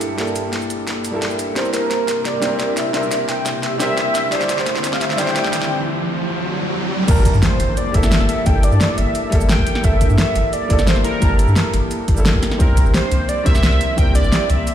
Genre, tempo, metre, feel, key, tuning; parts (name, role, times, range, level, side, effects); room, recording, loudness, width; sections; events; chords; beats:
liquid drum and bass; 174 BPM; 4/4; straight; G dorian; A4 = 441 Hz
felt-muted upright piano; accompaniment; 0.0-14.7 s; G3 to A5; -23 LUFS; equal; low-pass filter, digital delay
airy breathy pad; sustained chords; 0.0-14.7 s; G2 to A5; -27 LUFS; left 1 dB; chorus, phaser
pop drum kit; drums; 0.0-14.7 s; cabasa, crash cymbal, hi-hat, snare drum; -23 LUFS; equal; high-pass filter on snare, high-pass filter on hats, high-pass filter on perc, high-pass filter on cymbals
warm velvety synth lead; melody; 1.6-14.7 s; Bb4 to G5; -22 LUFS; equal; chorus, ping-pong delay
riser and impact; sound effects; 4.3-8.5 s; -24 LUFS; equal
warm sub bass; bass; 7.1-14.6 s; G1 to G2; -17 LUFS; equal
electronic kick drum; drums; 7.1-14.1 s; -18 LUFS; equal
moderate lush hall reverb, RT60 1.9 s; played on a big sound system in a bare room, stone room reverb, faint mains hum; -15 LUFS; side -10 dB against mid
0.0-7.1 A section; 7.1-14.7 B section
build-up 0.0-7.1; drum fill 0.0-5.7; filter sweep on soft synth lead 0.0-7.1; riser 4.3-7.1; break 5.7-7.1; drop 7.1-14.7; impact 7.1-8.5
0.0 Gm69; 1.6 C7; 4.3 D9sus4; 7.1 Gm69; 12.6 C7
| 0.19 0.53 0.88 1.22 | 1.56 1.91 2.25 2.60 | 2.94 3.29 3.63 3.98 | 4.32 4.67 5.01 5.36 | 5.70 6.05 6.39 6.74 | 7.08 7.43 7.77 8.12 | 8.46 8.81 9.15 9.50 | 9.84 10.19 10.53 10.88 | 11.22 11.56 11.91 12.26 | 12.60 12.95 13.29 13.63 | 13.98 14.32 14.67